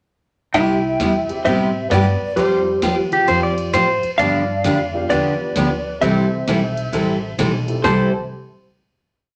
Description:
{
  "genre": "country, western swing",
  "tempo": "131 BPM",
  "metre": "4/4",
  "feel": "swing 65% on 8ths",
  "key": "C major",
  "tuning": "A4 = 436 Hz",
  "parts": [
    { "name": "clean lap steel guitar", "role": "melody", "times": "0.5-8.1 s", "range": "G4 to G5", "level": "-23 LUFS", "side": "equal", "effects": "none" },
    { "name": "archtop guitar, miked and amplified", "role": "second line", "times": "0.5-8.1 s", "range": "G3 to A4", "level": "-27 LUFS", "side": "equal", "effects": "none" },
    { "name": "picked steel-string acoustic guitar", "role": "accompaniment", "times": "0.5-8.1 s", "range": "C3 to C5", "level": "-23 LUFS", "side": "equal", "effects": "none" },
    { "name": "upright bass", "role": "bass", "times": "0.5-8.1 s", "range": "A1 to A2", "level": "-28 LUFS", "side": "equal", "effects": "none" },
    { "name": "soft vintage rhythm box", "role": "drums", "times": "0.5-8.0 s", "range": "hi-hat, kick drum, ride cymbal, snare drum", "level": "-33 LUFS", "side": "equal", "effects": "none" },
    { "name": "dark upright piano", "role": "accompaniment", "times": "1.3-8.1 s", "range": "F3 to A4", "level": "-30 LUFS", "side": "equal", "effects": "none" },
    { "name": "clean lap steel guitar", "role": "second line", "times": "3.1-4.1, 7.8-8.1 s", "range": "G4 to D5", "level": "-20 LUFS", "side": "equal", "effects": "none" }
  ],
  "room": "wet club reverb, RT60 0.7 s",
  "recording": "none",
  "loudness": "-18 LUFS",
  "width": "mono",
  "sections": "0.5-7.8 A section; 7.8-9.4 final chord",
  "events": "none",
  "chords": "0.5 Cmaj7; 2.4 Fsus2; 4.2 G7; 6.0 C6"
}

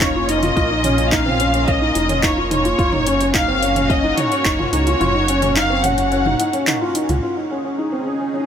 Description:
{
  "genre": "piano and strings electronica",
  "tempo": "108 BPM",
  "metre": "4/4",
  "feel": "straight",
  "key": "unclear",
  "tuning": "A4 = 439 Hz",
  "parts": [
    { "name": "dark studio violin section", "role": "melody", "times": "0.0-6.7 s", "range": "Db5 to Gb5", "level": "-20 LUFS", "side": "left 1 dB", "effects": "digital delay" },
    { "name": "lush unison pad", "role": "sustained chords", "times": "0.0-8.5 s", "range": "Bb3 to Ab4", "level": "-26 LUFS", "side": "right 1 dB", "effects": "chorus, phaser" },
    { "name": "felt-muted upright piano", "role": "riff", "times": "0.0-8.4 s", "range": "C4 to F4", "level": "-20 LUFS", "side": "left 1 dB", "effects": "digital delay" },
    { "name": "round analog bass", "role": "bass", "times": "0.0-7.2 s", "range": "F1 to Db2", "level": "-23 LUFS", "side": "right 1 dB", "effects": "sidechain pumping" },
    { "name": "deep house drum kit", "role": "drums", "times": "0.0-7.2 s", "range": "handclaps, hi-hat, toms", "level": "-24 LUFS", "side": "right 2 dB", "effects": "none" },
    { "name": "electronic kick drum", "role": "drums", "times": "0.0-4.6 s", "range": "none", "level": "-22 LUFS", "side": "right 1 dB", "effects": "none" }
  ],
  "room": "light reverb",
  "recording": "none",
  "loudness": "-15 LUFS",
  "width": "side -8 dB against mid",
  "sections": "0.0-7.2 A section; 7.2-8.5 B section",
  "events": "kick drops out 5.0-7.2",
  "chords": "0.0 Bbm; 2.8 Gb; 7.2 Absus4"
}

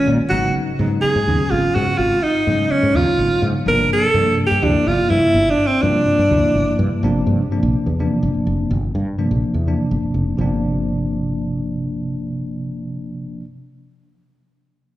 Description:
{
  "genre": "electric jazz fusion",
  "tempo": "250 BPM (eighths)",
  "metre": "7/8",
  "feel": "straight",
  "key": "unclear",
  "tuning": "A4 = 441 Hz",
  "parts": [
    { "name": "bright alto saxophone", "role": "melody", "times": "0.0-6.8 s", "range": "C4 to Bb4", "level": "-17 LUFS", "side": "right 1 dB", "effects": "none" },
    { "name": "bell-like tine electric piano", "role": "accompaniment", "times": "0.0-13.4 s", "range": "C3 to F4", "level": "-21 LUFS", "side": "equal", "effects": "medium stereo tremolo" },
    { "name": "woody fretless electric bass", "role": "bass", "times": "0.1-13.4 s", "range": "F1 to Bb2", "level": "-21 LUFS", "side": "equal", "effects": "analog chorus" }
  ],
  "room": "moderate lush hall reverb, RT60 2.6 s",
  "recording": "live gig heard through the venue's PA, club reverb",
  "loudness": "-16 LUFS",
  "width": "side -14 dB against mid",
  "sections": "0.0-7.0 A section; 7.0-10.4 B section; 10.4-13.8 C section",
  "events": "none",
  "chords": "0.3 Abm7; 3.7 Gm7"
}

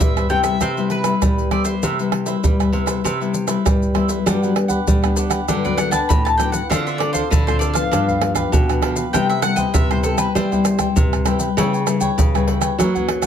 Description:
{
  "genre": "samba and choro",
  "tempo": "99 BPM",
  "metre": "4/4",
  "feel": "straight",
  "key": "C major, G major from 4.3 s",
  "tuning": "A4 = 440 Hz",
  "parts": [
    { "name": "mandolin", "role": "melody", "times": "0.0-11.5 s", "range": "A4 to B5", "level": "-23 LUFS", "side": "left 2 dB", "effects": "none" },
    { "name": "cavaquinho", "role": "accompaniment", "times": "0.0-13.3 s", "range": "D4 to G5", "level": "-26 LUFS", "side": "right 3 dB", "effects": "none" },
    { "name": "nylon-string guitar", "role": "accompaniment", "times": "0.0-13.3 s", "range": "F#2 to A4", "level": "-23 LUFS", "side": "left 8 dB", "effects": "none" },
    { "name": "nylon-string guitar", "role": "bass", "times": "0.0-13.3 s", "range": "G2 to G3", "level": "-22 LUFS", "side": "right 1 dB", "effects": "none" },
    { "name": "maracas, surdo, pandeiro and tamborim", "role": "percussion", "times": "0.0-13.3 s", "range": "none", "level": "-19 LUFS", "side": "right 1 dB", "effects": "none" }
  ],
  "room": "light reverb",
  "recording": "close, detailed microphones",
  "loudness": "-16 LUFS",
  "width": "side -8 dB against mid",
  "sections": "0.0-4.3 A section; 4.3-13.3 B section",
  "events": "mandolin solo 4.3-13.3",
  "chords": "0.0 Cmaj7; 4.3 Gmaj7; 6.7 Dm7; 7.9 G7; 9.1 Cmaj7; 11.6 C#m7b5"
}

